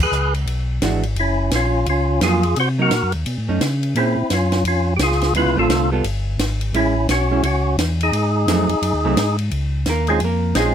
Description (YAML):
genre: soul jazz organ trio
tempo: 172 BPM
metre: 4/4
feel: swing 62% on 8ths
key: Db major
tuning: A4 = 440 Hz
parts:
  - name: percussive tonewheel organ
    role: melody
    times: 0.0-10.7 s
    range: Ab3 to C5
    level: -19 LUFS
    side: equal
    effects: slow rotary speaker, overdrive
  - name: mellow tonewheel organ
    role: bass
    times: 0.0-10.7 s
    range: Gb1 to Db3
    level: -20 LUFS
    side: equal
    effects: overdrive, chorus vibrato, slow rotary speaker
  - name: compact cocktail drum kit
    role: drums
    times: 0.0-10.7 s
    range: crash cymbal, hi-hat, kick drum, ride cymbal, snare drum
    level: -25 LUFS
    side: equal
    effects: none
  - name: vintage hollow-body jazz guitar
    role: accompaniment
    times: 0.8-10.7 s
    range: Db3 to C5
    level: -21 LUFS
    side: right 4 dB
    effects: none
room: little or no reverb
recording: close, detailed microphones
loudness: -16 LUFS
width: side -9 dB against mid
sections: 0.0-9.5 A section; 9.5-10.7 B section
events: hollow-body jazz guitar solo 9.5-10.7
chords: 0.0 E9; 1.2 Gbmaj9; 2.6 Cm7b5; 3.3 Cb9; 4.0 Bbm9; 5.3 Dm7; 6.0 N.C.; 6.7 Amaj7; 8.1 Ab7b9; 9.5 Dbmaj9